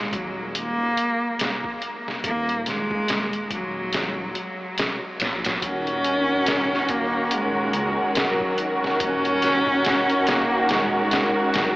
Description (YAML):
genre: trip hop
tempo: 71 BPM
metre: 4/4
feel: swing 58% on 16ths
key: Eb minor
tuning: A4 = 444 Hz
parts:
  - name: rich cello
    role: melody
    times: 0.0-11.8 s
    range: Gb3 to Db4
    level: -24 LUFS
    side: equal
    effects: vintage 12-bit sampler grit, dub echo
  - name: dark detuned saw bass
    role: bass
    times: 0.0-11.8 s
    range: Eb1 to Db2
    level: -36 LUFS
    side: equal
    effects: none
  - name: trip hop sampler-style drum kit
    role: drums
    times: 0.1-11.8 s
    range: hi-hat, kick drum, snare drum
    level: -27 LUFS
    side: equal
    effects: small room ambience
  - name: muted studio string section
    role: sustained chords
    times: 5.6-11.8 s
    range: Eb3 to Bb4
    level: -23 LUFS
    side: equal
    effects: none
room: wet huge ambient reverb, RT60 7.3 s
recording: dreamy mix soaked in reverb, AM radio sound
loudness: -20 LUFS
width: side -19 dB against mid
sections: 0.0-5.6 A section; 5.6-11.8 B section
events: none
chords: 0.0 Ebm; 5.6 Ebm7